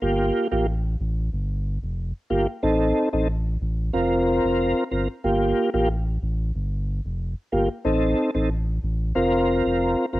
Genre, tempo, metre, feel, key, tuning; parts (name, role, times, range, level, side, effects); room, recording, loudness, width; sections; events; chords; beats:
dancehall; 92 BPM; 4/4; straight; G minor; A4 = 439 Hz
tonewheel organ; accompaniment; 0.0-10.2 s; Bb3 to Bb4; -21 LUFS; equal; chorus vibrato, slow rotary speaker, cassette tape
sub bass with octave; bass; 0.0-10.2 s; F1 to A1; -25 LUFS; equal
light reverb; home recording on cassette; -21 LUFS; side -17 dB against mid
0.0-10.2 A section
0.0 Gm7; 2.6 Adim; 3.9 Fsus4; 5.2 Gm7; 7.8 Adim; 9.2 Fsus4
| 0.02 0.67 1.33 1.98 | 2.63 3.28 3.94 4.59 | 5.24 5.89 6.54 7.20 | 7.85 8.50 9.15 9.80